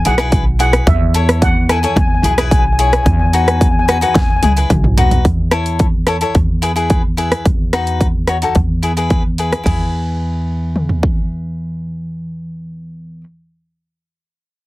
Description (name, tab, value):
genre	calypso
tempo	109 BPM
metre	4/4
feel	straight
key	E major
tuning	A4 = 441 Hz
part	steel pan	melody	0.1-4.5 s	E5 to G#5	-19 LUFS	left 2 dB	none
part	cavaquinho	accompaniment	0.1-13.3 s	D#4 to C#5	-19 LUFS	left 3 dB	none
part	upright bass	bass	0.1-13.2 s	B1 to E2	-17 LUFS	equal	none
part	big-room dance drum kit	drums	0.1-11.2 s	hi-hat, kick drum, ride cymbal, rim click, snare drum, toms	-15 LUFS	equal	overdrive
room	little or no reverb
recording	heavily compressed radio sound, multiband compression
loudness	-12 LUFS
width	side -18 dB against mid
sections	0.0-5.3 A section; 5.3-9.7 B section; 9.7-11.9 C section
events	drum fill 4.2-5.3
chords	0.0 E; 0.9 A/E; 2.0 E; 3.1 B/E; 4.2 E; 4.7 B; 5.3 A/E; 6.4 E; 7.5 B/E; 8.6 E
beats	0.33 | 0.87 1.42 1.97 2.51 | 3.06 3.61 4.16 4.70 | 5.25 5.80 6.35 6.90 | 7.45 8.00 8.55 9.10 | 9.66 10.21 10.76 11.31